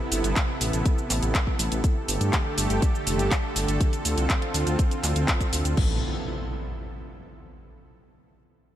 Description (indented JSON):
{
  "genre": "progressive house",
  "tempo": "122 BPM",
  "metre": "4/4",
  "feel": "straight",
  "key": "A minor",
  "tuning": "A4 = 441 Hz",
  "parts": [
    { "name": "supersaw pad", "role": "sustained chords", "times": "0.0-6.0 s", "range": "C3 to A4", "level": "-29 LUFS", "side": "right 1 dB", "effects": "sidechain pumping" },
    { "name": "dark detuned saw bass", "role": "bass", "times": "0.1-6.0 s", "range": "F1 to G2", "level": "-26 LUFS", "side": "equal", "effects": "sidechain pumping" },
    { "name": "house drum kit", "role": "drums", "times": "0.1-5.9 s", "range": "cabasa, crash cymbal, handclaps, hi-hat", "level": "-29 LUFS", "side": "equal", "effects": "studio reverb" },
    { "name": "electronic kick drum", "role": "drums", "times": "0.4-5.9 s", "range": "none", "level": "-24 LUFS", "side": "equal", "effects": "studio reverb" },
    { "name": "impact", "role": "sound effects", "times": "5.8-7.7 s", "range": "none", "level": "-33 LUFS", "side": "equal", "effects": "none" }
  ],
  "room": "digital ambience",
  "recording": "none",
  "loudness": "-22 LUFS",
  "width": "side -12 dB against mid",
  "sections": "0.0-5.8 A section; 5.8-7.7 B section",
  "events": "none",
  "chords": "0.0 Amadd9; 1.8 Gsus2; 3.8 Dm7; 5.8 Amadd9",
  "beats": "0.36 0.86 1.35 | 1.84 2.33 2.82 3.31 | 3.81 4.30 4.79 5.28 | 5.77 6.27 6.76 7.25"
}